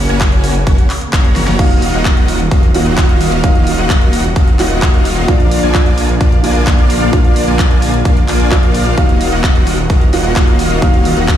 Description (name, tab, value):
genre	EDM, festival progressive house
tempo	130 BPM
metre	4/4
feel	straight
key	Eb minor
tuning	A4 = 445 Hz
part	muted studio string section	sustained chords	0.0-11.4 s	Db3 to Bb3	-23 LUFS	right 1 dB	none
part	supersaw chords	riff	0.0-11.4 s	Bb3 to Bb5	-17 LUFS	equal	analog chorus, sidechain pumping, tape echo
part	detuned saw bass	bass	0.0-11.4 s	Eb1 to Bb1	-17 LUFS	equal	sidechain pumping
part	big-room dance drum kit	drums	0.1-11.4 s	crash cymbal, handclaps, hi-hat, snare drum	-21 LUFS	left 1 dB	overdrive, studio reverb
part	electronic kick drum	drums	0.2-11.4 s	none	-11 LUFS	equal	overdrive, studio reverb
part	warm grand piano	accompaniment	1.6-11.4 s	F3 to F5	-19 LUFS	right 2 dB	sidechain pumping, tape echo
room	digital ambience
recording	played on a big sound system in a bare room, large studio reverb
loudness	-9 LUFS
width	side -10 dB against mid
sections	0.0-11.4 A section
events	drum fill 1.4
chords	0.0 Gb; 1.6 Ebmadd9; 5.3 Bb; 9.0 Ebmadd9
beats	0.21 0.67 1.13 | 1.59 2.05 2.51 2.98 | 3.44 3.90 4.36 4.82 | 5.28 5.75 6.21 6.67 | 7.13 7.59 8.05 8.51 | 8.98 9.44 9.90 10.36 | 10.82 11.28